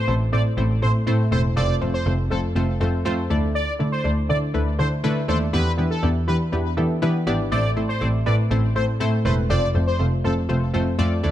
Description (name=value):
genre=dance-pop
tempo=121 BPM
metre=4/4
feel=straight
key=A minor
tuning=A4 = 439 Hz
part: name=octave-doubled lead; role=melody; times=0.0-10.3 s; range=A4 to D5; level=-28 LUFS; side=equal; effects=chorus, phaser, ping-pong delay
part: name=analog pluck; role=accompaniment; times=0.1-11.3 s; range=A3 to D5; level=-25 LUFS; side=left 1 dB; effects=chorus
part: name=rich double bass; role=bass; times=0.1-11.3 s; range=E1 to E3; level=-21 LUFS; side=equal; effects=none
room=light reverb, small room ambience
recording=dark, warm production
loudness=-19 LUFS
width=side -12 dB against mid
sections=0.0-11.3 A section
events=none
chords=0.0 Am; 1.6 F; 3.3 Dsus2; 5.5 Em7; 7.5 Am; 9.5 F